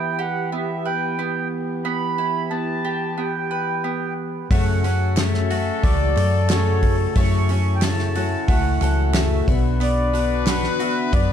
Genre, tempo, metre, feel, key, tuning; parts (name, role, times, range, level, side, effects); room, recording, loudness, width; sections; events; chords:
indie folk with a building arrangement; 90 BPM; 4/4; straight; A4 = 440 Hz
mellow accordion; melody; 0.0-11.3 s; C#5 to C#6; -27 LUFS; right 1 dB; analog delay
warm brass ensemble; sustained chords; 0.0-11.3 s; C#3 to G4; -30 LUFS; left 2 dB
mandolin; arpeggios; 0.0-11.3 s; A3 to B4; -28 LUFS; right 7 dB
warm trumpet; second line; 4.5-11.3 s; A4 to B4; -30 LUFS; left 8 dB
picked twelve-string acoustic guitar; accompaniment; 4.5-11.3 s; F#2 to F#4; -26 LUFS; left 5 dB
hollow-body short-scale fingered electric bass; bass; 4.5-11.3 s; B1 to F#2; -20 LUFS; equal
natural country drum kit; drums; 4.5-11.3 s; hi-hat, kick drum, snare drum; -22 LUFS; equal
group handclap; percussion; 5.2-10.6 s; -32 LUFS; right 8 dB
tambourine; percussion; 5.2-10.6 s; -36 LUFS; left 8 dB
light reverb; dark, warm production; -18 LUFS; side -9 dB against mid
0.0-11.3 A section
0.0 Em; 4.5 F#m; 9.5 Bm